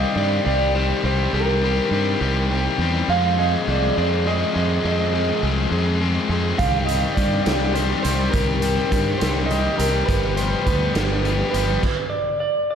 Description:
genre	indie rock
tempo	69 BPM (dotted quarters)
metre	6/8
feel	straight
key	C minor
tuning	A4 = 445 Hz
part	electric guitar through a small old amp	melody	0.0-12.8 s	Bb4 to F5	-24 LUFS	right 2 dB	tape echo
part	biting overdriven guitar	riff	0.0-11.8 s	Eb3 to Ab4	-22 LUFS	left 4 dB	none
part	growling fingered electric bass	bass	0.0-11.8 s	G1 to G2	-23 LUFS	right 1 dB	overdrive
part	raw garage drum kit	drums	6.6-12.0 s	crash cymbal, hi-hat, kick drum, snare drum	-24 LUFS	right 1 dB	none
room	moderate lush hall reverb, RT60 1.9 s, studio reverb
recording	dreamy mix soaked in reverb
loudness	-18 LUFS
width	side -8 dB against mid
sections	0.0-12.8 A section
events	stop 11.8-12.8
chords	0.0 Cm7; 3.1 Fm7; 6.6 Cm7; 10.1 G7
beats	0.46 | 1.33 2.21 | 3.08 3.96 | 4.83 5.71 | 6.58 7.46 | 8.33 9.21 | 10.08 10.95 | 11.82 12.70

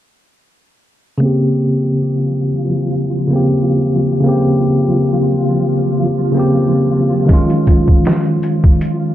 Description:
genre	trip hop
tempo	79 BPM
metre	4/4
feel	swing 54% on 16ths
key	Bb dorian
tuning	A4 = 440 Hz
part	tine electric piano	accompaniment	1.2-9.1 s	Db3 to G4	-13 LUFS	equal	harmonic tremolo, tape echo
part	flickering grainy texture	texture	1.9-9.1 s	F3 to F4	-21 LUFS	right 1 dB	built-in reverb
part	trip hop sampler-style drum kit	drums	7.3-9.0 s	hi-hat, kick drum, snare drum	-11 LUFS	equal	overdrive
part	tube shaker	percussion	7.3-9.0 s	none	-60 LUFS	left 3 dB	none
room	light reverb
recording	low-pass filter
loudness	-12 LUFS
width	side -12 dB against mid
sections	1.2-9.1 A section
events	filter sweep 1.2-9.1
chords	1.2 Bbm69; 7.3 Eb9sus4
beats	| 1.22 1.97 2.73 3.49 | 4.25 5.01 5.77 6.53 | 7.29 8.05 8.81

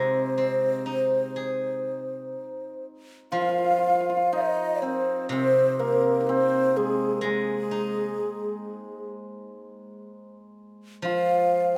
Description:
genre	chinese traditional, Chinese chamber ensemble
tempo	62 BPM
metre	4/4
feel	rubato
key	C jue mode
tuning	A4 = 443 Hz
part	breathy low xiao	melody	0.0-11.8 s	Ab4 to F5	-29 LUFS	equal	none
part	hammered dulcimer	second line	0.0-11.8 s	Ab3 to F4	-32 LUFS	equal	none
part	steel-string zither	accompaniment	0.0-11.8 s	C3 to Ab4	-31 LUFS	equal	none
part	breathy reedy low xiao	second line	3.3-11.8 s	Ab4 to F5	-34 LUFS	equal	none
room	wet recital hall reverb, RT60 1.3 s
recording	close, detailed microphones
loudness	-25 LUFS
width	mono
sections	0.0-3.3 A section; 3.3-11.8 B section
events	none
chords	none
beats	0.36 1.33 2.33 | 3.33 4.33 5.31 6.28 | 7.23 8.18 9.13 10.08 | 11.04

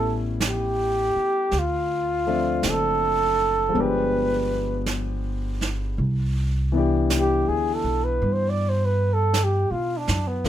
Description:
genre	jazz ballad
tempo	54 BPM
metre	4/4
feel	swing 68% on 8ths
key	C major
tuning	A4 = 440 Hz
part	breathy flugelhorn	melody	0.0-10.5 s	B3 to D5	-23 LUFS	right 2 dB	none
part	warm concert grand piano	accompaniment	0.0-10.5 s	E3 to E5	-28 LUFS	left 5 dB	none
part	upright bass	bass	0.0-10.5 s	F#1 to B2	-25 LUFS	equal	none
part	jazz brush drum kit	drums	0.4-10.5 s	brushed snare drum, hi-hat, snare drum	-30 LUFS	right 4 dB	none
room	little or no reverb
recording	minimal, uncompressed stereo recording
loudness	-21 LUFS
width	side -11 dB against mid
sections	0.0-6.0 A section; 6.0-10.5 B section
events	flugelhorn solo 6.0-10.5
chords	0.0 A7; 1.5 Dm7; 3.8 G7b9; 6.0 Cmaj9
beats	0.40 | 1.52 2.63 3.75 4.87 | 5.99 7.11 8.22 9.34 | 10.45

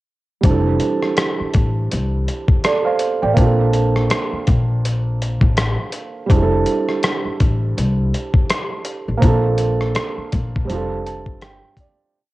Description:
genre	lo-fi hip hop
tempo	82 BPM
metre	4/4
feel	swing 57% on 16ths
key	F major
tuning	A4 = 440 Hz
part	felt-muted upright piano	accompaniment	0.4-12.2 s	E3 to A5	-21 LUFS	right 4 dB	low-pass filter
part	upright bass	bass	0.4-11.6 s	F1 to C2	-19 LUFS	left 1 dB	none
part	dusty soul sampler-style drum kit	drums	0.4-12.0 s	hi-hat, kick drum, rim click	-18 LUFS	left 1 dB	overdrive, cassette tape
room	light reverb, small room ambience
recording	home recording on cassette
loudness	-16 LUFS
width	side -18 dB against mid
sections	0.4-12.2 A section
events	fade-out 9.2-12.2; felt piano fill 10.7-12.2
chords	0.4 Fmaj13; 3.4 Bbmaj9; 6.3 Fmaj13 (rootless); 9.2 Bbmaj9; 10.7 F69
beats	| 0.45 1.18 1.91 2.64 | 3.37 4.10 4.83 5.57 | 6.30 7.03 7.76 8.49 | 9.23 9.96 10.69 11.42

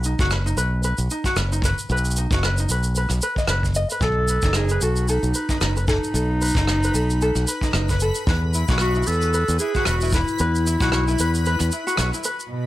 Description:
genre	folktronica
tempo	113 BPM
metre	4/4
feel	swing 56% on 16ths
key	B mixolydian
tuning	A4 = 438 Hz
part	ukulele	arpeggios	0.0-12.5 s	D#4 to D#5	-26 LUFS	equal	tape echo
part	modern bright fingered electric bass	bass	0.0-12.1 s	E1 to E2	-22 LUFS	equal	none
part	shaker and rim click	drums	0.0-12.5 s	none	-27 LUFS	right 1 dB	none
part	kick drum	drums	0.2-10.9 s	none	-24 LUFS	equal	none
part	warm clarinet	melody	4.0-12.3 s	D#4 to A4	-25 LUFS	equal	tape echo
part	backwards swelling texture	texture	5.0-12.7 s	F#4 to B5	-33 LUFS	left 3 dB	built-in reverb
part	warm string quartet	sustained chords	12.5-12.7 s	B2	-26 LUFS	right 2 dB	stereo widening
room	light reverb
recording	none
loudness	-19 LUFS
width	side -15 dB against mid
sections	0.0-12.5 A section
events	break 11.5-12.5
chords	0.0 B; 4.0 B7; 8.3 Esus2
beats	0.30 0.83 1.37 | 1.90 2.43 2.96 3.49 | 4.02 4.55 5.08 5.61 | 6.14 6.68 7.21 7.74 | 8.27 8.80 9.33 9.86 | 10.39 10.92 11.46 11.99 | 12.52

